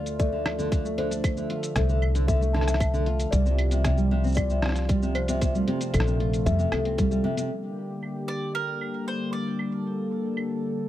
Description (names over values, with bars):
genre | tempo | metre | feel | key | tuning
folktronica | 115 BPM | 4/4 | straight | unclear | A4 = 440 Hz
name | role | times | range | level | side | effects
celesta | second line | 0.0-7.5 s | A4 to A5 | -32 LUFS | left 5 dB | tape echo
warm analog pad | sustained chords | 0.0-10.9 s | C3 to E5 | -31 LUFS | equal | chorus, vintage 12-bit sampler grit
nylon-string guitar | arpeggios | 0.0-7.5 s | C3 to F4 | -29 LUFS | right 1 dB | tape echo
upright bass | bass | 0.0-7.2 s | Bb1 to F2 | -26 LUFS | equal | none
lo-fi sampler-style drum kit | drums | 0.1-10.5 s | claves, hi-hat, rim click, shaker | -33 LUFS | right 1 dB | low-pass filter on perc, studio reverb, low-pass filter on snare, low-pass filter on hats
electronic kick drum | drums | 0.2-7.1 s | none | -26 LUFS | equal | overdrive, studio reverb
bowl-back mandolin | melody | 8.3-10.1 s | Bb4 to D5 | -33 LUFS | right 5 dB | tape echo
room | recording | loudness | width
light reverb | dry, close 1970s-style studio recording | -23 LUFS | side -13 dB against mid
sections
0.0-7.5 A section; 7.5-10.9 B section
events
none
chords
0.0 Dm; 3.3 Csus4; 7.5 Gm